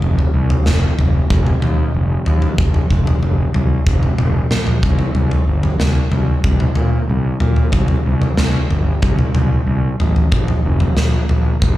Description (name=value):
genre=quiet-loud alternative rock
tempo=93 BPM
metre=4/4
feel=straight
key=C dorian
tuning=A4 = 440 Hz
part: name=fuzz fingered electric bass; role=bass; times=0.0-11.8 s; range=F1 to Bb2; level=-17 LUFS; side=equal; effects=overdrive
part: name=big rock drum kit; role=drums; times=0.0-11.8 s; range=kick drum, snare drum, toms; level=-15 LUFS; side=equal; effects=none
room=little or no reverb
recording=live gig heard through the venue's PA, club reverb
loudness=-13 LUFS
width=side -15 dB against mid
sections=0.0-11.8 A section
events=none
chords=none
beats=| 0.03 0.67 1.31 1.95 | 2.59 3.23 3.87 4.51 | 5.16 5.80 6.44 7.09 | 7.73 8.38 9.03 9.67 | 10.32 10.97 11.62